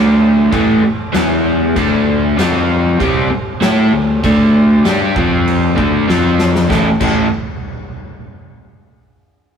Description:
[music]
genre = garage rock duo or trio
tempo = 97 BPM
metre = 4/4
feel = straight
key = unclear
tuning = A4 = 439 Hz
[part]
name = crunchy overdriven guitar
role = riff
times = 0.0-7.3 s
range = A2 to A4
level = -12 LUFS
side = equal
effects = none
[part]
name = fuzz picked electric bass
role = bass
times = 0.0-7.3 s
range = A1 to A2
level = -20 LUFS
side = equal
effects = overdrive
[part]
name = oversized low-tuned drum kit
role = drums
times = 0.5-7.2 s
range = crash cymbal, kick drum, snare drum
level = -20 LUFS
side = equal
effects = none
[sound]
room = moderate stone room reverb, RT60 1.2 s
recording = rough rehearsal-room recording, warm saturation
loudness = -11 LUFS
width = side -7 dB against mid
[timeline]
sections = 0.0-6.7 A section; 6.7-9.2 B section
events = drum fill 6.1-6.7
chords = 0.0 D5; 0.5 A5; 1.1 E5; 1.8 D5; 2.4 F5; 3.0 D5; 5.2 F5; 5.8 D5; 6.1 F5; 6.7 A

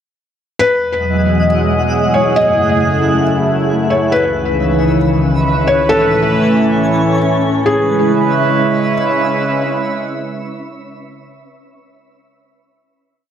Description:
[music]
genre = hip hop, atmospheric cloud-rap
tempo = free time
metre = none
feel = none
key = C# minor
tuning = A4 = 439 Hz
[part]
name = felt-muted upright piano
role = melody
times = 0.6-8.9 s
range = G#4 to D#5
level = -16 LUFS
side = left 2 dB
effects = tape echo
[part]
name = sweeping resonant pad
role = sustained chords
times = 0.6-11.2 s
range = C#2 to D#5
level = -13 LUFS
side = right 1 dB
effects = chorus
[part]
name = twinkling granular texture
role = texture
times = 1.0-11.2 s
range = G#3 to G#5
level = -22 LUFS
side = equal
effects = built-in reverb
[sound]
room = wet spring reverb, RT60 1.6 s, small room reverb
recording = echo-heavy mix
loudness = -11 LUFS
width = side -9 dB against mid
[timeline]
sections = 0.6-7.7 breakdown; 7.7-11.2 final chord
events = none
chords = 0.6 Emaj9; 2.4 F#m9; 4.1 C#m7; 5.9 Amaj7; 7.7 C#m7

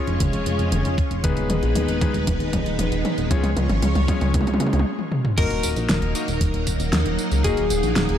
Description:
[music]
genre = synthwave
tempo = 116 BPM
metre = 4/4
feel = straight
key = unclear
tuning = A4 = 437 Hz
[part]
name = string machine, full ensemble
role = sustained chords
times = 0.0-8.2 s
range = Gb3 to Db5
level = -27 LUFS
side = equal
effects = ensemble chorus, sidechain pumping
[part]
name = clear electric grand piano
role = stabs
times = 0.0-7.6 s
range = Ab3 to Eb5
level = -30 LUFS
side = left 4 dB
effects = vintage 12-bit sampler grit, low-pass filter, ping-pong delay
[part]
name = chorused synth bass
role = bass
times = 0.1-8.2 s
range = Eb1 to Eb2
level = -23 LUFS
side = equal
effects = tube saturation
[part]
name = pop drum kit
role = drums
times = 0.1-8.2 s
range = crash cymbal, hi-hat, snare drum, tambourine, toms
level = -25 LUFS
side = equal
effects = overdrive
[part]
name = electronic kick drum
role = drums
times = 0.2-7.5 s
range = none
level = -23 LUFS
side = equal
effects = overdrive
[part]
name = lightly driven lead guitar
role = melody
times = 5.4-8.2 s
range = Ab4 to Bb4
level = -27 LUFS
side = left 4 dB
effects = ping-pong delay
[part]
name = soft synth bell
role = second line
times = 5.4-8.2 s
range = Ab4 to Bb4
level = -34 LUFS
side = left 7 dB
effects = none
[sound]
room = light reverb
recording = dark, warm production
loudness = -19 LUFS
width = side -10 dB against mid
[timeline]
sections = 0.0-5.4 A section; 5.4-8.2 B section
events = drum fill 0.0-4.9, 5.0-5.4; break 4.9-5.4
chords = 0.0 Db/F; 1.2 Abm/Eb; 3.3 Db; 5.4 Ebm

